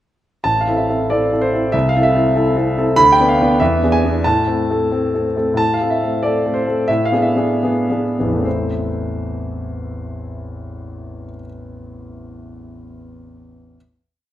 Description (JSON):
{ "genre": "classical, romantic character piece for solo piano", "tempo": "69-98 BPM", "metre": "2/4", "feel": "rubato", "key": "A minor", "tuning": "A4 = 440 Hz", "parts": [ { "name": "clear concert grand piano", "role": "solo", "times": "0.4-13.8 s", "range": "A1 to B5", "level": "-15 LUFS", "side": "equal", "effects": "none" } ], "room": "wet recital hall reverb, RT60 1.4 s", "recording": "none", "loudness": "-14 LUFS", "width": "side -13 dB against mid", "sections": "0.4-5.6 A section; 5.6-8.4 coda; 8.4-11.6 final chord", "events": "slowing down 4.9-8.4", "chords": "0.4 Am; 1.7 Am/C; 3.0 Bdim/D; 3.6 E7; 4.2 Am; 6.9 E7/A; 8.4 Am" }